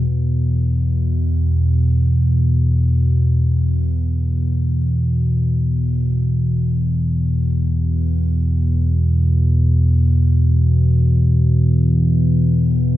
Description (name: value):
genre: ambient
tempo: free time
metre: none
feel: none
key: unclear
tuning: A4 = 439 Hz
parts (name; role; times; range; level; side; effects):
- analog drone; solo; 0.0-13.0 s; E2 to B2; -14 LUFS; equal; chorus
room: little or no reverb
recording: none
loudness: -15 LUFS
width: side -14 dB against mid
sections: 0.1-13.0 A section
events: none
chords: 0.1 E5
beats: free time